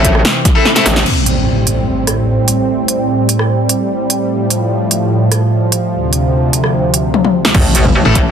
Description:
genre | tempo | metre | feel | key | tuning
heavy wobble dubstep | 148 BPM | 4/4 | half-time | A minor | A4 = 441 Hz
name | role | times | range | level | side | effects
lush unison pad | sustained chords | 0.0-8.3 s | D2 to C4 | -14 LUFS | right 1 dB | chorus, sidechain pumping
tight distorted guitar | stabs | 0.0-0.9, 8.1-8.2 s | A3 to A4 | -17 LUFS | left 4 dB | distortion, vintage 12-bit sampler grit, dub echo
metallic wobble bass | bass | 0.0-1.0, 7.5-8.3 s | A1 | -13 LUFS | equal | chorus, overdrive
big-room dance drum kit | drums | 0.0-8.2 s | crash cymbal, hi-hat, rim click, snare drum, toms | -14 LUFS | left 1 dB | none
electronic kick drum | drums | 0.0-0.5, 7.5-8.2 s | none | -13 LUFS | equal | none
impact | sound effects | 1.1-2.7, 7.5-8.3 s | none | -18 LUFS | equal | none
snarling distorted saw bass | bass | 8.1 s | A1 | -11 LUFS | equal | distortion, overdrive
room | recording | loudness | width
moderate digital room reverb, RT60 1.1 s | dense, heavily limited modern master | -11 LUFS | side -8 dB against mid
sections
0.0-1.1 A section; 1.1-7.5 B section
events
drop 0.0-1.1; drum fill 0.7-1.1, 7.1-7.5; band accent 1.0; impact 1.1-2.7, 7.5-8.3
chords
0.0 Am; 1.1 Am7; 4.3 Fadd9; 5.9 Dm7; 7.5 Am

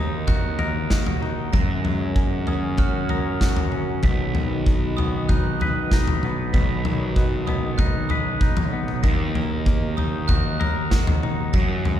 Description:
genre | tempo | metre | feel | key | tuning
post-rock | 96 BPM | 4/4 | straight | unclear | A4 = 441 Hz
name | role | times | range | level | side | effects
chorused pulse-width pad | sustained chords | 0.0-12.0 s | F#4 to B5 | -35 LUFS | right 1 dB | none
glockenspiel with soft plastic mallets | arpeggios | 0.0-12.0 s | D#6 to B6 | -33 LUFS | right 4 dB | none
twangy electric guitar | arpeggios | 0.0-12.0 s | B2 to B4 | -30 LUFS | left 2 dB | none
fuzz picked electric bass | bass | 0.0-12.0 s | B1 to F#2 | -27 LUFS | right 1 dB | overdrive
big rock drum kit | drums | 0.3-12.0 s | kick drum, snare drum, toms | -21 LUFS | equal | none
room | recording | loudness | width
moderate concert hall reverb, RT60 2.4 s | recorded in a church or concert hall | -20 LUFS | side -10 dB against mid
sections
0.0-12.0 A section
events
none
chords
0.0 D#m; 1.5 F#add9; 4.0 B; 9.0 D#m

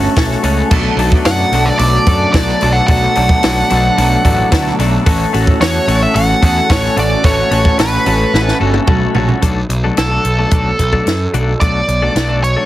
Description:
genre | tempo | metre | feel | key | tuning
indie rock | 110 BPM | 4/4 | straight | B minor | A4 = 439 Hz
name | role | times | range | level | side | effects
ensemble organ-string | sustained chords | 0.0-9.4 s | A4 to C#6 | -28 LUFS | left 1 dB | none
electric guitar through a small old amp | riff | 0.0-9.4 s | B2 to A4 | -20 LUFS | right 4 dB | analog chorus
twelve-string electric guitar | riff | 0.0-12.7 s | B2 to A4 | -18 LUFS | left 6 dB | none
fuzz picked electric bass | bass | 0.0-12.5 s | G1 to F#2 | -16 LUFS | equal | overdrive
compact cocktail drum kit | drums | 0.2-12.6 s | crash cymbal, hi-hat, kick drum, snare drum, toms | -16 LUFS | equal | none
nasal lead guitar with a parked wah | melody | 1.3-12.7 s | A4 to F#5 | -16 LUFS | right 2 dB | overdrive, slapback echo
room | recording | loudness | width
little or no reverb | heavily compressed radio sound, multiband compression | -10 LUFS | side -14 dB against mid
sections
0.0-9.4 A section; 9.4-12.7 B section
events
drum fill 8.3-9.4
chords
0.0 F#m; 0.7 Bm7; 5.1 F#m/A; 9.4 Bm7

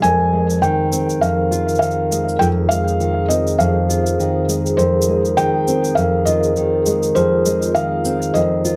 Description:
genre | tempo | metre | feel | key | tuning
folktronica | 101 BPM | 4/4 | swing 56% on 16ths | unclear | A4 = 438 Hz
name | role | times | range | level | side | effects
felt-muted upright piano | melody | 0.0-8.8 s | C5 to Ab5 | -22 LUFS | equal | tape echo
vibraphone with soft mallets | second line | 0.0-8.8 s | F4 to C5 | -24 LUFS | equal | tape echo
warbly tape-like pad | sustained chords | 1.0-8.8 s | F2 to Ab4 | -27 LUFS | equal | chorus, built-in reverb, phaser
nylon-string guitar | arpeggios | 0.0-8.8 s | F2 to F4 | -22 LUFS | equal | tape echo
shaker | drums | 0.0-8.8 s | none | -31 LUFS | equal | none
room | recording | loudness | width
moderate small room reverb, RT60 0.5 s | none | -17 LUFS | mono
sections
0.0-8.8 A section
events
filter sweep on ambient pad 0.0-8.8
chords
0.0 Fm7

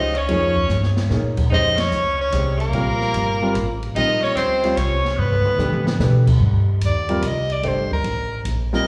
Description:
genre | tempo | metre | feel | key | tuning
modal jazz | 147 BPM | 3/4 | swing 67% on 8ths | Bb dorian | A4 = 440 Hz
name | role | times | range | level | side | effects
bright soprano saxophone | melody | 0.0-8.9 s | Bb4 to Eb5 | -25 LUFS | equal | slapback echo
edgy alto saxophone | second line | 0.0-6.0 s | Bb3 to Eb4 | -30 LUFS | equal | slapback echo
warm upright piano | accompaniment | 0.0-8.8 s | F3 to Db5 | -28 LUFS | equal | slapback echo
upright bass | bass | 0.0-8.8 s | G1 to B2 | -23 LUFS | equal | none
open jazz drum kit | drums | 0.1-8.8 s | crash cymbal, hi-hat, kick drum, ride cymbal, snare drum, toms | -30 LUFS | equal | none
room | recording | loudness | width
light reverb, small room ambience | live gig heard through the venue's PA, club reverb, studio reverb | -20 LUFS | mono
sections
0.0-6.4 A section; 6.4-8.9 B section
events
drum fill 0.7-1.1, 5.2-6.0; band accent 1.7; soprano saxophone solo 6.4-8.9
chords
0.0 Bbm69; 5.2 G; 6.4 Cm7

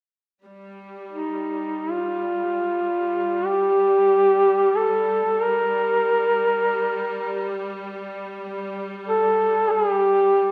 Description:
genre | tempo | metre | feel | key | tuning
caucasian folk, Caucasian lament | free time | none | none | G minor | A4 = 441 Hz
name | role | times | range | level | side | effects
rich symphonic string section | drone | 0.4-10.5 s | G3 | -34 LUFS | equal | none
mellow duduk | melody | 1.1-10.5 s | Eb4 to Bb4 | -21 LUFS | equal | none
room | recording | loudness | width
moderate scoring stage reverb, RT60 1.6 s | none | -21 LUFS | mono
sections
0.4-10.5 A section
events
none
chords
none

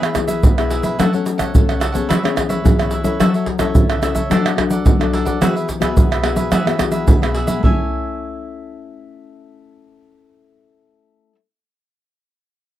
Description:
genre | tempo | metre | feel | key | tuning
samba and choro | 108 BPM | 4/4 | straight | A major | A4 = 440 Hz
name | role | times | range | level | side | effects
cavaquinho | accompaniment | 0.0-11.4 s | D4 to G#5 | -24 LUFS | right 3 dB | none
nylon-string guitar | accompaniment | 0.0-11.4 s | B2 to A4 | -21 LUFS | left 7 dB | none
egg shaker, pandeiro, tamborim and surdo | percussion | 0.0-7.8 s | none | -16 LUFS | right 1 dB | none
room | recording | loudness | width
little or no reverb | dry, close 1970s-style studio recording | -14 LUFS | side -13 dB against mid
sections
0.0-7.6 A section; 7.6-9.8 B section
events
none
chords
0.0 E; 1.0 F#m; 2.1 C#m7/E; 3.2 F#m7; 4.3 D/F#; 5.4 Eadd9; 7.6 Amaj7

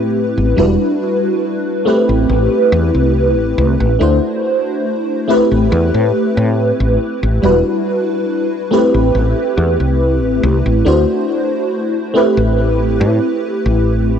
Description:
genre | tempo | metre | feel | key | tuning
vaporwave | 70 BPM | 4/4 | straight | A dorian | A4 = 440 Hz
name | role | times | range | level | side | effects
FM electric piano with soft pad layer | accompaniment | 0.0-14.2 s | G3 to C5 | -14 LUFS | equal | phaser, analog chorus, cassette tape, tape echo
woody fretless electric bass | bass | 0.0-14.2 s | E1 to A2 | -15 LUFS | equal | none
room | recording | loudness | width
moderate huge ambient reverb, RT60 6.7 s | cassette tape, nothing above 10.3 kHz | -12 LUFS | side -8 dB against mid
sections
0.0-14.2 A section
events
none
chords
0.0 Am9; 0.6 Em9; 1.9 Am9; 4.0 D9; 5.3 Am9; 7.4 Em9; 8.7 Am9; 10.9 D9; 12.2 Am9

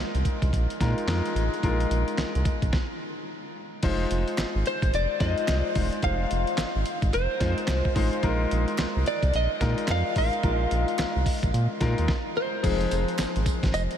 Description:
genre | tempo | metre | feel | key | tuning
R&B, new jack swing | 109 BPM | 4/4 | swing 62% on 16ths | F minor | A4 = 443 Hz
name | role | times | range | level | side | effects
warm concert grand piano | accompaniment | 0.0-14.0 s | F3 to C5 | -29 LUFS | left 2 dB | none
round analog bass | bass | 0.0-13.9 s | E1 to Bb2 | -26 LUFS | equal | none
dusty soul sampler-style drum kit | drums | 0.1-14.0 s | crash cymbal, handclaps, hi-hat, kick drum, snare drum, tambourine | -29 LUFS | equal | none
group handclap | percussion | 4.4-13.3 s | none | -47 LUFS | right 4 dB | none
direct-recorded clean electric guitar | melody | 4.7-13.8 s | C5 to F5 | -29 LUFS | left 1 dB | wide subtle chorus, analog delay
room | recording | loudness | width
moderate huge ambient reverb, RT60 7.4 s | dreamy mix soaked in reverb | -23 LUFS | side -9 dB against mid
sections
0.0-3.8 A section; 3.8-12.6 B section; 12.6-14.0 C section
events
stop 2.7-3.8, 12.1-12.6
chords
0.0 Bb7sus4; 3.8 Fm7; 8.2 Bb7sus4; 12.6 Fm7

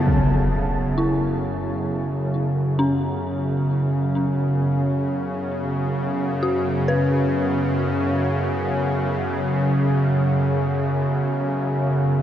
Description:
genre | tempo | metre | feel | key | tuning
dark ambient drone | free time | none | none | unclear | A4 = 441 Hz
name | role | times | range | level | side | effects
deep dark ambient pad | sustained chords | 0.0-12.2 s | F#3 to A4 | -33 LUFS | equal | chorus, built-in reverb
bowed-like drone | drone | 0.0-12.2 s | F#2 to C#3 | -20 LUFS | equal | built-in reverb
dark detuned synth bell | arpeggios | 1.0-12.2 s | C#4 to B4 | -28 LUFS | left 2 dB | chorus, tape echo
room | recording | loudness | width
wet huge ambient reverb, RT60 7.6 s | none | -20 LUFS | side -10 dB against mid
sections
0.1-12.2 A section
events
fade-in on ambient pad 0.1-12.2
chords
0.1 F#m

